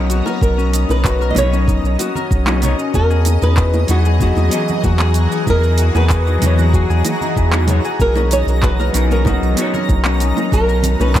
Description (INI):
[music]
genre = sunset chillout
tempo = 95 BPM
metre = 4/4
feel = straight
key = E lydian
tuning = A4 = 440 Hz
[part]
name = flamenco guitar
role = melody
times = 0.0-11.2 s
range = F#4 to D#5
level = -22 LUFS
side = right 1 dB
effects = analog delay
[part]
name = vintage hollow-body jazz guitar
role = accompaniment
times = 0.0-11.2 s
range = E3 to D#5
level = -23 LUFS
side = moving between left 5 dB and right 1 dB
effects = auto-pan, analog delay
[part]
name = shimmering ambient pad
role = sustained chords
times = 0.0-11.2 s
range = E3 to A#5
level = -25 LUFS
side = equal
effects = chorus, built-in reverb, phaser
[part]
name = Celtic harp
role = arpeggios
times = 0.0-11.2 s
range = C#4 to A#4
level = -23 LUFS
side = left 6 dB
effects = analog delay
[part]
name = round analog bass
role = bass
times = 0.0-11.2 s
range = B1 to E2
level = -15 LUFS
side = equal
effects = none
[part]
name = smooth R&B drum kit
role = drums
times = 0.1-11.2 s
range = cabasa, handclaps, hi-hat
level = -24 LUFS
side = right 2 dB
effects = none
[part]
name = bongos and congas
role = percussion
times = 0.3-11.1 s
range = none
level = -27 LUFS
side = right 4 dB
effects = analog delay
[part]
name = electronic kick drum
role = drums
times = 0.4-11.2 s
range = none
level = -17 LUFS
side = equal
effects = none
[part]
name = twinkling granular texture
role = texture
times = 4.0-11.2 s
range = A#5 to A#6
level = -29 LUFS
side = right 2 dB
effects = built-in reverb
[sound]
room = light reverb, digital ambience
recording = echo-heavy mix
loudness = -13 LUFS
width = side -12 dB against mid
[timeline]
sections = 0.0-11.2 A section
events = none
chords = 0.0 Bmaj9; 2.9 Emaj9; 8.0 Bmaj9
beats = | 0.42 1.05 1.68 2.31 | 2.94 3.58 4.21 4.84 | 5.47 6.10 6.73 7.36 | 8.00 8.63 9.26 9.89 | 10.52 11.15